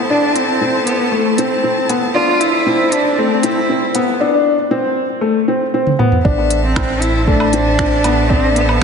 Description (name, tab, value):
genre	piano and strings electronica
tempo	117 BPM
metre	4/4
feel	straight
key	A minor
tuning	A4 = 440 Hz
part	warm string quartet	sustained chords	0.0-8.8 s	E4 to A5	-22 LUFS	equal	none
part	round analog bass	bass	0.0-8.8 s	A1	-22 LUFS	right 1 dB	tube saturation, sidechain pumping, high-pass filter
part	rich cello	melody	0.1-8.8 s	A3 to F4	-17 LUFS	right 1 dB	ping-pong delay
part	felt-muted upright piano	riff	0.1-8.6 s	A3 to D4	-16 LUFS	left 2 dB	ping-pong delay
part	organic electronic drum kit	drums	0.4-8.8 s	finger snaps, hi-hat, toms, woodblock	-20 LUFS	right 1 dB	none
part	electronic kick drum	drums	6.2-8.8 s	none	-18 LUFS	right 1 dB	none
room	wet lush hall reverb, RT60 2.2 s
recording	dreamy mix soaked in reverb, nothing above 10.9 kHz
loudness	-12 LUFS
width	side -6 dB against mid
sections	0.0-6.3 A section; 6.3-8.8 B section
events	build-up 0.0-6.3; drum fill 5.9-6.3; drop 6.3-8.8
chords	0.0 Am